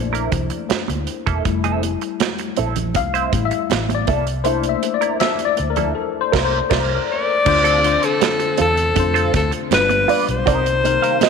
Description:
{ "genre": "lush 1970s-style soul", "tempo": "80 BPM", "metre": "4/4", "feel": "straight", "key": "unclear", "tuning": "A4 = 438 Hz", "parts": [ { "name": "tine electric piano", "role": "accompaniment", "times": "0.0-11.3 s", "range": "C3 to F5", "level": "-22 LUFS", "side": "left 12 dB", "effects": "analog chorus" }, { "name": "vintage muted fingered electric bass", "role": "bass", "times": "0.0-11.0 s", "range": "E1 to F2", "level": "-23 LUFS", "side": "equal", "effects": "none" }, { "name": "clean electric guitar", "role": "riff", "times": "0.1-11.3 s", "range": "Bb3 to F5", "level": "-23 LUFS", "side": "right 12 dB", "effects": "wah" }, { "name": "modern studio drum kit", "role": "drums", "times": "0.1-11.3 s", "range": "crash cymbal, hi-hat, kick drum, snare drum", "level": "-23 LUFS", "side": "right 6 dB", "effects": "none" }, { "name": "congas", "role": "percussion", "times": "0.3-11.3 s", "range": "none", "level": "-29 LUFS", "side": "right 11 dB", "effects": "none" }, { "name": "clear alto saxophone", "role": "melody", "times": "7.1-11.3 s", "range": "A4 to D5", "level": "-17 LUFS", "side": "left 3 dB", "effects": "none" }, { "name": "string machine, full ensemble", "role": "sustained chords", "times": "7.5-11.3 s", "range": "C3 to F4", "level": "-31 LUFS", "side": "equal", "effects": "ensemble chorus" } ], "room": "light reverb, small room ambience", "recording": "1960s-style stereo with parts hard left and right", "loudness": "-16 LUFS", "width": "side -5 dB against mid", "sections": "0.0-7.5 A section; 7.5-11.3 B section", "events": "tine electric piano solo 0.0-7.5; band accent 6.0-7.5", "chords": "0.0 C13; 1.5 Fmaj7; 4.1 C13; 7.5 Dm7; 9.7 G7; 10.5 Cm7", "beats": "0.70 | 1.45 2.21 2.96 3.71 | 4.46 5.21 5.96 6.71 | 7.46 8.21 8.96 9.71 | 10.46 11.22" }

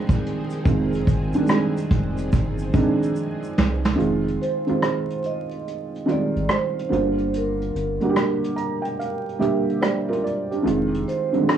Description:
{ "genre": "lo-fi hip hop", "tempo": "72 BPM", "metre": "4/4", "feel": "swing 65% on 16ths", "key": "F dorian", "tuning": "A4 = 441 Hz", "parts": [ { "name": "felt-muted upright piano", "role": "accompaniment", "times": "0.0-11.6 s", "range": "D3 to Bb5", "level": "-22 LUFS", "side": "right 2 dB", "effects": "low-pass filter, plate reverb" }, { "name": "string machine, violins", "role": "sustained chords", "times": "0.0-4.0 s", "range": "Eb3 to Ab4", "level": "-31 LUFS", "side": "left 1 dB", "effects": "ensemble chorus, low-pass filter, plate reverb" }, { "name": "vintage brush drum kit", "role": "drums", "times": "0.1-11.6 s", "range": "hi-hat, kick drum, rim click, snare drum", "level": "-22 LUFS", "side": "equal", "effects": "vintage 12-bit sampler grit" }, { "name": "tube shaker", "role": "percussion", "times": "0.1-4.0 s", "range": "none", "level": "-53 LUFS", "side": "left 3 dB", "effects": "none" }, { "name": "soft dub sub bass", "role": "bass", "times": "0.7-11.0 s", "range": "F1 to C2", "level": "-27 LUFS", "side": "equal", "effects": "none" }, { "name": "vibraphone with soft mallets", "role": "melody", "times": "4.4-11.6 s", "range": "Bb4 to Eb5", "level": "-28 LUFS", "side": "right 3 dB", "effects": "low-pass filter, plate reverb" } ], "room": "moderate small room reverb, RT60 0.5 s", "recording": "worn, warbling old tape, cassette tape, vinyl crackle, warbly pitch drift, small room ambience", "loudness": "-20 LUFS", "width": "side -9 dB against mid", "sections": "0.0-4.0 A section; 4.0-11.6 B section", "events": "break 0.0-4.0; drum fill 3.2-4.0; kick muted 4.0-11.6", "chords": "0.0 Fm7; 6.9 Gm7; 10.7 Fm7", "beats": "| 0.66 1.49 2.32 3.16 | 3.99 4.82 5.66 6.49 | 7.32 8.16 8.99 9.82 | 10.66 11.49" }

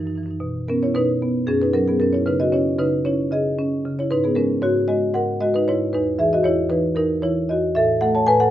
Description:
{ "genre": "classical, contemporary piece for solo marimba", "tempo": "229 BPM (eighths)", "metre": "7/8", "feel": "rubato", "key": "B major", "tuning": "A4 = 440 Hz", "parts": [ { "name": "marimba with medium mallets", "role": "solo", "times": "0.0-8.5 s", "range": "E2 to A5", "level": "-18 LUFS", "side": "equal", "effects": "none" } ], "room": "light reverb", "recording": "dark, warm production", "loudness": "-18 LUFS", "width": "side -12 dB against mid", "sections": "0.4-8.5 A section", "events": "none", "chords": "0.4 Badd9; 1.5 F#5; 2.3 C#madd9; 4.1 G#m9; 5.9 Emaj7(no3); 7.8 Aadd9", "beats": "0.14 | 0.41 0.68 0.94 1.21 1.47 1.74 2.00 | 2.27 2.53 2.79 3.06 3.32 3.58 3.85 | 4.11 4.37 4.63 4.89 5.16 5.42 5.68 | 5.94 6.20 6.46 6.71 6.97 7.23 7.49 | 7.75 8.01 8.27" }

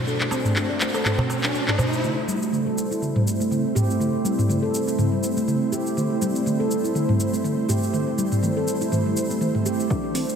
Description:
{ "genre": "afro house", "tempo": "122 BPM", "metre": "4/4", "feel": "swing 56% on 16ths", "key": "A dorian", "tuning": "A4 = 439 Hz", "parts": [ { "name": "buzzing marimba with soft mallets", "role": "melody", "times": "0.0-1.8 s", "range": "A4", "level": "-37 LUFS", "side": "equal", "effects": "none" }, { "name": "ethereal airy pad", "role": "sustained chords", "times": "0.0-10.4 s", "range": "A3 to C5", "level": "-27 LUFS", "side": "right 1 dB", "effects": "ensemble chorus, built-in reverb, tremolo, sidechain pumping" }, { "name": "riser", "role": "sound effects", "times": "0.0-2.0, 9.9-10.4 s", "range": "none", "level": "-31 LUFS", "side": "right 1 dB", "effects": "none" }, { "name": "handpan", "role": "arpeggios", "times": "0.1-10.3 s", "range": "G3 to D5", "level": "-25 LUFS", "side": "equal", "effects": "sidechain pumping, low-pass filter, analog delay" }, { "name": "afro-pop drum kit", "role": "drums", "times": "0.1-10.4 s", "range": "handclaps, hi-hat, shaker, toms", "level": "-25 LUFS", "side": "equal", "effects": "overdrive" }, { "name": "darbuka", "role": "percussion", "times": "0.3-1.9 s", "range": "none", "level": "-28 LUFS", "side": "right 2 dB", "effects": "none" }, { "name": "warm sub bass", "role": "bass", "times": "2.0-10.4 s", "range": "none", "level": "barely audible", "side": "none", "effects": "none" }, { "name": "electronic kick drum", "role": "drums", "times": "9.9-10.0 s", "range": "none", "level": "-27 LUFS", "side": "equal", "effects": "none" } ], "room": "wet lush hall reverb, RT60 2.4 s", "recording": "dreamy mix soaked in reverb, high-pass filter", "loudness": "-20 LUFS", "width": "side -7 dB against mid", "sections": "0.0-2.0 A section; 2.0-10.4 B section", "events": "riser 0.0-2.0; build-up 2.0-10.4; drum fill 2.0-10.4; filter sweep on ambient pad 2.0-10.4", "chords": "0.0 D7/A; 2.0 Am", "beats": "| 0.07 0.56 1.05 1.54 | 2.04 2.53 3.02 3.51 | 4.00 4.50 4.99 5.48 | 5.97 6.46 6.95 7.45 | 7.94 8.43 8.92 9.41 | 9.90" }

